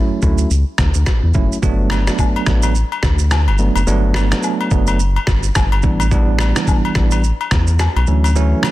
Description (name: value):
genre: afrobeats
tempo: 107 BPM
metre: 4/4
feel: swing 58% on 16ths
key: unclear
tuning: A4 = 442 Hz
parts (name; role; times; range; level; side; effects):
- bell-like tine electric piano; accompaniment; 0.0-8.7 s; E3 to E4; -20 LUFS; right 4 dB; medium stereo tremolo
- round analog bass; bass; 0.2-8.5 s; F#1 to E2; -15 LUFS; equal; none
- trip hop sampler-style drum kit; drums; 0.2-8.7 s; finger snaps, kick drum, rim click, shaker; -18 LUFS; equal; none
- agogo bells and woodblock; percussion; 1.9-8.7 s; none; -24 LUFS; left 7 dB; none
room: little or no reverb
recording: dense, heavily limited modern master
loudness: -13 LUFS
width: side -16 dB against mid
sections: 0.0-8.7 A section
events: none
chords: 0.0 Dmaj9; 1.6 Gmaj9; 5.8 A9sus4; 8.1 Dmaj9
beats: 0.51 1.07 | 1.63 2.19 2.75 3.31 | 3.87 4.43 4.99 5.55 | 6.11 6.67 7.24 7.80 | 8.36